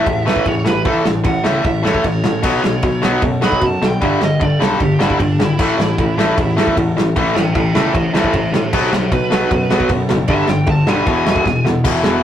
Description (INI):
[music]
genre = punk rock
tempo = 153 BPM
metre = 4/4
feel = straight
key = unclear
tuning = A4 = 442 Hz
[part]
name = high-gain lead guitar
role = melody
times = 0.0-11.6 s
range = D4 to B5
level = -22 LUFS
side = right 2 dB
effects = distortion
[part]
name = distorted electric guitar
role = riff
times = 0.0-12.2 s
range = E2 to B3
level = -17 LUFS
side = left 2 dB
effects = overdrive
[part]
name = overdriven semi-hollow guitar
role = riff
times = 0.0-12.2 s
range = E2 to B3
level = -22 LUFS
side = right 4 dB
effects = none
[part]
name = fuzz picked electric bass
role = bass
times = 0.1-12.2 s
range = E1 to B2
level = -24 LUFS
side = equal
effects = overdrive
[part]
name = loose indie drum kit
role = drums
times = 0.1-12.1 s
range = crash cymbal, kick drum, ride cymbal, snare drum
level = -19 LUFS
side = equal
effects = none
[sound]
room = moderate booth ambience, RT60 0.2 s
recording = rough rehearsal-room recording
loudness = -13 LUFS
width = side -10 dB against mid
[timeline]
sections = 0.0-11.8 A section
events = lead electric guitar solo 0.0-11.8; drum fill 11.5-11.8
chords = 0.0 A; 2.4 B5; 4.0 G5; 5.6 A5; 8.7 B5; 10.3 G; 11.1 E